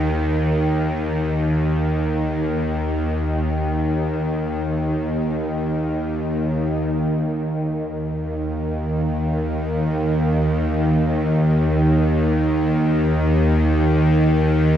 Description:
ambient; free time; A4 = 440 Hz
bowed-like drone; solo; 0.0-14.8 s; Eb2 to Eb3; -18 LUFS; equal; built-in reverb, diffuse ambient delay
wet huge ambient reverb, RT60 8.9 s; -18 LUFS; side -10 dB against mid
0.0-6.9 A section; 6.9-14.8 B section
free time

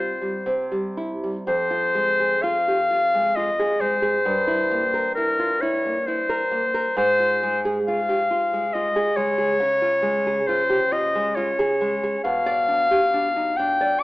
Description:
romantic duo for clarinet and classical guitar; 67 BPM; 3/4; rubato; F minor; A4 = 436 Hz
bright clarinet; melody; 0.0-14.0 s; Bb4 to D6; -21 LUFS; left 1 dB
nylon-string guitar; accompaniment; 0.0-14.0 s; F2 to D5; -25 LUFS; right 1 dB
moderate recital hall reverb, RT60 1.6 s; AM radio sound; -19 LUFS; side -19 dB against mid
0.0-1.5 A section; 1.5-14.0 B section
0.5 C; 1.5 Fm; 4.2 C7/G; 7.0 Fm/Ab; 9.6 Db; 12.2 G7/B
0.47 | 1.46 2.43 3.34 | 4.24 5.15 6.05 | 6.95 7.85 8.73 | 9.60 10.48 11.37 | 12.25 13.13 14.02

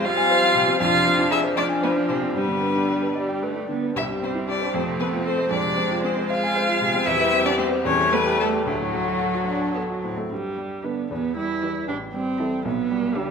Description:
quick classical-period movement for piano quintet; 76 BPM (dotted quarters); 6/8; uneven beats, rubato; G major from 7.1 s; A4 = 436 Hz
rich violin; melody; 0.0-13.3 s; F#4 to F5; -24 LUFS; left 5 dB
dark violin; second line; 0.0-13.3 s; A3 to G4; -30 LUFS; left 1 dB
rich cello; second line; 0.0-13.3 s; D3 to F4; -27 LUFS; right 5 dB
clear baby grand piano; accompaniment; 0.0-13.3 s; A1 to A5; -26 LUFS; equal
rich viola; accompaniment; 0.0-13.3 s; F3 to E4; -27 LUFS; right 3 dB
wet recital hall reverb, RT60 1.6 s; minimal, uncompressed stereo recording; -20 LUFS; side -6 dB against mid
0.0-10.3 A section; 10.3-13.3 B section
0.0 Fm; 0.8 Dm7b5/F; 2.4 G; 4.0 C; 4.7 F; 5.5 Fm; 7.1 C/E; 7.9 A5/E; 8.7 D; 10.3 G; 11.1 Em; 11.9 Am7; 12.7 G/B
0.06 | 0.81 1.57 | 2.36 3.16 | 3.96 4.75 | 5.51 6.30 | 7.07 7.86 | 8.67 9.48 | 10.31 11.10 | 11.88 12.65

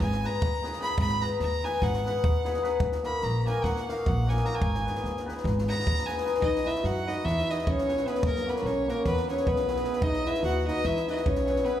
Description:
balkan folk, Balkan wedding band; 299 BPM (eighths); 9/8; straight; Ab minor, B major from 6.4 s; A4 = 440 Hz
rich fiddle; melody; 0.0-11.8 s; A#4 to Cb6; -31 LUFS; equal
upright bass; bass; 0.0-11.6 s; Ab1 to F#2; -31 LUFS; right 1 dB
compact cocktail drum kit; percussion; 0.0-11.7 s; kick drum, snare drum; -32 LUFS; right 1 dB
cimbalom; accompaniment; 0.2-11.8 s; Bb3 to Cb5; -30 LUFS; left 4 dB
dark clarinet; second line; 6.4-11.8 s; A#3 to F#4; -32 LUFS; right 3 dB
wet recital hall reverb, RT60 1.8 s; heard from further back in the room; -25 LUFS; side -11 dB against mid
0.0-6.4 A section; 6.4-11.8 B section
fiddle solo 0.0-6.4
0.0 Abm; 2.8 Ebm; 4.6 Abm; 6.4 B; 7.2 E; 8.2 F#; 9.0 E; 10.0 B; 10.8 E
0.17 0.37 0.58 0.78 | 0.98 1.18 1.39 1.59 1.79 1.99 2.19 2.40 2.60 | 2.80 3.00 3.20 3.40 3.61 3.81 4.01 4.21 4.41 | 4.61 4.81 5.01 5.22 5.42 5.62 5.82 6.02 6.22 | 6.42 6.62 6.82 7.02 7.22 7.42 7.62 7.82 8.02 | 8.22 8.42 8.62 8.82 9.02 9.22 9.42 9.62 9.82 | 10.02 10.22 10.42 10.62 10.82 11.02 11.22 11.42 11.62

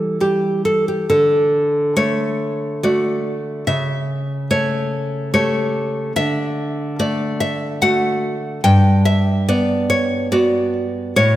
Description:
romantic piece for solo classical guitar; 72 BPM; 3/4; rubato; D major; A4 = 440 Hz
nylon-string guitar; solo; 0.0-11.4 s; G2 to G5; -16 LUFS; equal
wet concert hall reverb, RT60 2.2 s; -16 LUFS; side -13 dB against mid
0.0-11.4 A section
0.0 C#dim/E (rootless); 1.1 D; 3.7 A7/C#; 6.2 D; 8.6 Gmaj7
0.22 | 1.09 1.98 2.84 | 3.68 4.51 5.34 | 6.16 6.99 7.82 | 8.64 9.47 10.32 | 11.17

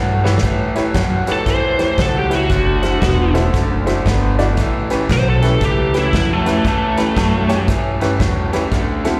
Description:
electric blues shuffle; 116 BPM; 4/4; swing 64% on 8ths; A mixolydian; A4 = 441 Hz
raw garage guitar; riff; 0.0-9.2 s; A2 to B3; -24 LUFS; equal; overdrive, slapback echo
upright bass; bass; 0.0-9.2 s; E1 to A2; -21 LUFS; equal
clear baby grand piano; accompaniment; 0.2-9.1 s; C4 to D5; -24 LUFS; equal; slapback echo
natural country drum kit; drums; 0.3-9.1 s; hi-hat, kick drum, snare drum; -24 LUFS; equal
biting lead guitar; melody; 1.3-7.7 s; A3 to C5; -21 LUFS; equal; overdrive, slapback echo
little or no reverb; live gig heard through the venue's PA, recital hall reverb; -16 LUFS; mono
0.4-9.2 A section
drum fill 0.2; lead electric guitar solo 0.4-9.2
0.4 A9; 2.5 D9; 4.6 A9
| 0.43 0.95 1.47 1.99 | 2.50 3.02 3.54 4.06 | 4.58 5.10 5.62 6.13 | 6.65 7.17 7.69 8.21 | 8.72

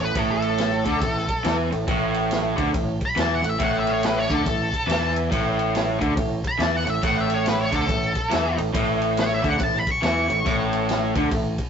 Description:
blues rock power trio and southern rock; 140 BPM; 4/4; swing 63% on 8ths; A major; A4 = 441 Hz
octave-fuzz lead guitar; melody; 0.0-10.9 s; A4 to C#6; -25 LUFS; left 1 dB; wah, distortion
raw garage guitar; riff; 0.0-11.5 s; A2 to E3; -23 LUFS; equal; overdrive
growling fingered electric bass; bass; 0.0-11.6 s; A1 to E2; -27 LUFS; equal; overdrive
vintage drum kit; drums; 0.2-11.7 s; kick drum, ride cymbal, snare drum; -27 LUFS; equal
moderate studio reverb, RT60 0.6 s; rough rehearsal-room recording, tube saturation, nothing above 7.8 kHz; -20 LUFS; side -7 dB against mid
0.0-11.7 A section
lead electric guitar solo 0.0-11.7
0.0 A5
| 0.15 0.59 1.02 1.45 | 1.88 2.31 2.74 3.17 | 3.60 4.03 4.46 4.89 | 5.32 5.75 6.17 6.60 | 7.03 7.46 7.89 8.32 | 8.75 9.17 9.60 10.03 | 10.46 10.89 11.32

